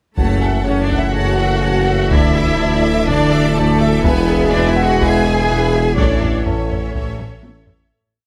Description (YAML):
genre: cinematic, hybrid orchestral and electronic film score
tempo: 124 BPM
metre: 4/4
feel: straight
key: F# minor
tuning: A4 = 445 Hz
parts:
  - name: dark symphonic violin section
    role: melody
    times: 0.2-7.6 s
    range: A4 to G#5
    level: -27 LUFS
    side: equal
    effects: none
  - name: bright symphonic violin section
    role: second line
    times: 0.2-7.9 s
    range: C#5 to D6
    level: -28 LUFS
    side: equal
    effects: none
  - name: warm symphonic viola section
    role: accompaniment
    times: 0.2-7.9 s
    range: E4 to F#5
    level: -26 LUFS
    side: equal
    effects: none
  - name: mellow French horn section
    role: sustained chords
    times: 0.2-7.6 s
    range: G#3 to E4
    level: -25 LUFS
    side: equal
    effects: none
  - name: warm trombone section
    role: sustained chords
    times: 0.2-7.7 s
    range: A2 to E3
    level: -26 LUFS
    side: equal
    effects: none
  - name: clear symphonic double bass section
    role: bass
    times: 0.2-7.9 s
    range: A1 to F#2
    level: -25 LUFS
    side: equal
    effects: none
  - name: rich studio cello section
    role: bass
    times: 0.2-7.7 s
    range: A3 to G#4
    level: -24 LUFS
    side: equal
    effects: none
  - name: saturated sub bass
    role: bass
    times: 0.2-7.9 s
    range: D1 to A1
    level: -26 LUFS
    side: equal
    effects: none
  - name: warm tuba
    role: bass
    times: 0.2-7.9 s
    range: E1 to D2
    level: -24 LUFS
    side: equal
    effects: none
  - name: taiko ensemble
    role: drums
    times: 0.2-7.9 s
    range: none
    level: -22 LUFS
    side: equal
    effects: none
  - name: dark baby grand piano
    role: texture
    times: 0.4-7.9 s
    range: A4 to A5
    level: -31 LUFS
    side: equal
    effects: none
room: light reverb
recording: close, detailed microphones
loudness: -15 LUFS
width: mono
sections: 0.2-7.9 theme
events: fade-out 6.0-7.9; drum fill 7.2-7.9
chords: 0.2 F#m7; 2.1 Dsus2; 4.0 E; 6.0 A